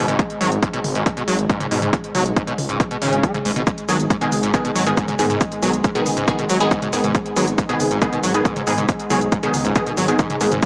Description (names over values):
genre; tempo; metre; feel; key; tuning
driving peak-time techno; 138 BPM; 4/4; straight; G# minor; A4 = 440 Hz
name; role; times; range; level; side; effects
screaming distorted acid line; riff; 0.0-10.7 s; G#2 to G#3; -22 LUFS; equal; distortion, ensemble chorus, sidechain pumping, tape echo
detuned saw bass; bass; 0.0-10.6 s; G#1 to G#2; -24 LUFS; equal; sidechain pumping
analog drone; drone; 0.0-10.7 s; G#2 to G#3; -26 LUFS; equal; chorus, sidechain pumping
techno drum kit; drums; 0.1-10.7 s; hi-hat, shaker, toms; -27 LUFS; equal; overdrive
electronic kick drum; drums; 0.2-10.7 s; none; -19 LUFS; equal; overdrive
rave stab; stabs; 3.9-10.5 s; D#3 to G#4; -21 LUFS; equal; chorus, built-in reverb, sidechain pumping, tape echo
room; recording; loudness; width
moderate stone room reverb, RT60 1.3 s, digital ambience; small speaker sound; -17 LUFS; side -31 dB against mid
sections
0.0-10.7 A section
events
none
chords
0.0 G#m